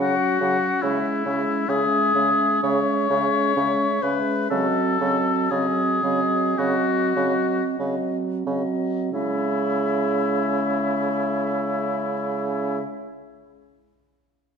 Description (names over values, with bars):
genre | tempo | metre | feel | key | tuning
classical, slow romantic movement for wind quintet | 43-73 BPM | 4/4 | rubato | C# minor | A4 = 444 Hz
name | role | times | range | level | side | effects
silver concert flute | melody | 0.0-12.8 s | D#5 to F#5 | -31 LUFS | left 6 dB | none
warm oboe | second line | 0.0-12.8 s | E4 to C#5 | -24 LUFS | left 4 dB | none
dark clarinet | accompaniment | 0.0-12.8 s | B#3 to C#4 | -27 LUFS | right 3 dB | none
warm French horn | accompaniment | 0.0-12.8 s | F#3 to G#3 | -28 LUFS | right 2 dB | none
clear bassoon | bass | 0.0-12.8 s | C#3 | -27 LUFS | right 2 dB | none
room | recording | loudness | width
wet concert hall reverb, RT60 1.9 s | minimal, uncompressed stereo recording | -20 LUFS | side -6 dB against mid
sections
0.0-9.1 A section; 9.1-14.3 B section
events
slowing down 0.0-9.1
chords
0.0 F#5/C#; 0.8 C#m; 4.5 G#7/C#; 9.1 C#m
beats
0.00 | 0.83 1.68 2.63 3.55 | 4.50 5.51 6.58 7.79 | 9.13 10.42 11.71